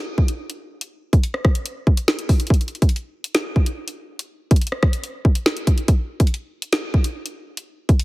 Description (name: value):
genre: hip hop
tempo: 142 BPM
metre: 4/4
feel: half-time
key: none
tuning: none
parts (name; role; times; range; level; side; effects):
- drill drum kit; drums; 0.2-8.0 s; hi-hat, kick drum, rim click, snare drum; -17 LUFS; equal; none
room: light reverb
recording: heavily compressed radio sound, multiband compression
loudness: -18 LUFS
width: side -20 dB against mid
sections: 0.0-8.0 A section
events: none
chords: none